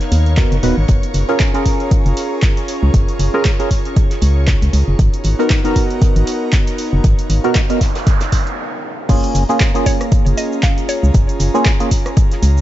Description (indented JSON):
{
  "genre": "deep house",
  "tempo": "117 BPM",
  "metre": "4/4",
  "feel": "swing 57% on 16ths",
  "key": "F# major",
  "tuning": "A4 = 440 Hz",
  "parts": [
    { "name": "airy breathy pad", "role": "sustained chords", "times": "0.0-12.6 s", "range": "B3 to A#5", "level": "-25 LUFS", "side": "equal", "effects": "chorus, sidechain pumping" },
    { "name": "damped 70s drum kit", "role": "drums", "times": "0.0-12.6 s", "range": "hi-hat, snare drum", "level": "-33 LUFS", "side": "right 3 dB", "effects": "none" },
    { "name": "punchy analog drum machine", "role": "drums", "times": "0.0-12.6 s", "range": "crash cymbal, handclaps, hi-hat, rim click, shaker", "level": "-25 LUFS", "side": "right 1 dB", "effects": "overdrive" },
    { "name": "string machine, violins", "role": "texture", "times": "0.0-8.6 s", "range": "C#5 to C#6", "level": "-32 LUFS", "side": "equal", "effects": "ensemble chorus, sidechain pumping" },
    { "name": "organ-like FM bass", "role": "bass", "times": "0.1-12.6 s", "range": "D#1 to D#2", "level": "-14 LUFS", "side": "equal", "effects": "sidechain pumping" },
    { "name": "percussive organ stab", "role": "stabs", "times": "0.4-11.9 s", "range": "A#3 to B4", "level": "-20 LUFS", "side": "right 1 dB", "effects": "chorus, phaser, sidechain pumping, dub echo" },
    { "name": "electronic kick drum", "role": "drums", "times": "0.4-12.3 s", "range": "none", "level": "-14 LUFS", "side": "equal", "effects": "none" },
    { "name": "noise sweep", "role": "sound effects", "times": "7.6-9.1 s", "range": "none", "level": "-27 LUFS", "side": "right 3 dB", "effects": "none" },
    { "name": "mallet-like synth pluck", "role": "melody", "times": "9.9-12.6 s", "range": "C#5 to E#5", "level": "-25 LUFS", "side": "equal", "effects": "chorus, digital delay" }
  ],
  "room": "little or no reverb",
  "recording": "nothing above 7.8 kHz",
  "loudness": "-12 LUFS",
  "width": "side -14 dB against mid",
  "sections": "0.0-9.1 A section; 9.1-12.6 B section",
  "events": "noise sweep 7.6-9.1; break 8.6-9.1; drop 9.1-12.6",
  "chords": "0.0 G#m9 (rootless); 0.9 F#maj9; 5.0 G#m9 (rootless); 9.1 F#maj9"
}